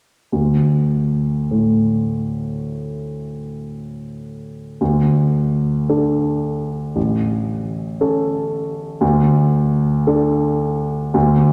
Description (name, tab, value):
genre	classical, romantic nocturne for solo piano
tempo	50-60 BPM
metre	4/4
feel	rubato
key	unclear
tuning	A4 = 440 Hz
part	warm grand piano	solo	0.3-11.5 s	A1 to A4	-19 LUFS	equal	none
room	wet concert hall reverb, RT60 2.3 s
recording	none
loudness	-18 LUFS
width	mono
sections	0.3-11.5 A section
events	none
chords	0.3 D5; 7.0 A; 9.0 D5